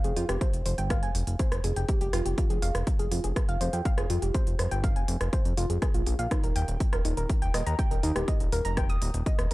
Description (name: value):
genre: melodic techno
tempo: 122 BPM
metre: 4/4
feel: straight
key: F minor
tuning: A4 = 440 Hz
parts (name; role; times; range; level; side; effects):
- soft round pluck; arpeggios; 0.0-9.5 s; Eb4 to Eb6; -33 LUFS; equal; chorus, sidechain pumping, analog delay
- fat analog bass; bass; 0.0-9.5 s; Eb1 to F2; -29 LUFS; equal; tube saturation, sidechain pumping
- techno drum kit; drums; 0.0-9.5 s; hi-hat, rim click; -36 LUFS; right 1 dB; none
- electronic kick drum; drums; 0.4-9.4 s; none; -27 LUFS; equal; none
room: digital ambience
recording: dry, gritty hardware recording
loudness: -25 LUFS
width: side -19 dB against mid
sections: 0.0-9.5 A section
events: none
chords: 0.0 Fmadd9; 6.3 Eb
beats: | 0.41 0.90 1.40 1.89 | 2.38 2.87 3.36 3.85 | 4.34 4.84 5.33 5.82 | 6.31 6.80 7.30 7.79 | 8.28 8.77 9.26